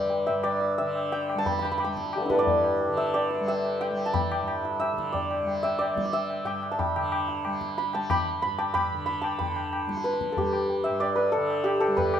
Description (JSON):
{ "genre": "indian classical, Hindustani", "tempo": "182 BPM", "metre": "4/4", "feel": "straight", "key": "G raga bhupali", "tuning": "A4 = 440 Hz", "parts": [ { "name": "santur", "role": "melody", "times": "0.0-12.2 s", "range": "G3 to B5", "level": "-25 LUFS", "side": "equal", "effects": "none" }, { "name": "tanpura", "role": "drone", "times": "0.0-12.2 s", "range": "G2 to G3", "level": "-35 LUFS", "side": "right 1 dB", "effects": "none" }, { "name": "tabla", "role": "percussion", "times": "0.1-12.2 s", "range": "none", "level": "-32 LUFS", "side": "left 4 dB", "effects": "none" } ], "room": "light reverb", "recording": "minimal, uncompressed stereo recording", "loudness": "-24 LUFS", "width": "side -9 dB against mid", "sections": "0.0-9.4 A section; 9.4-12.2 B section", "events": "speeding up 0.0-12.2", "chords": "none" }